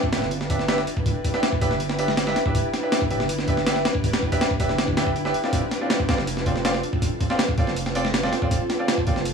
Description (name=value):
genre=drum and bass, jungle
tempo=161 BPM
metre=4/4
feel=straight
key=D dorian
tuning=A4 = 439 Hz
part: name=breakbeat sampler-style drum kit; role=drums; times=0.0-9.3 s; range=hi-hat, kick drum, snare drum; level=-23 LUFS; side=equal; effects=studio reverb
part: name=bright concert grand piano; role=stabs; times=0.1-9.2 s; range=C4 to E5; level=-26 LUFS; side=right 1 dB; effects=dub echo
part: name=long sustained 808-style bass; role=bass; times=0.1-9.3 s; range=D1 to C2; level=-28 LUFS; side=right 2 dB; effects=tube saturation
room=light reverb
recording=vinyl crackle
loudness=-20 LUFS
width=side -6 dB against mid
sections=0.0-9.3 A section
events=none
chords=0.0 Dm7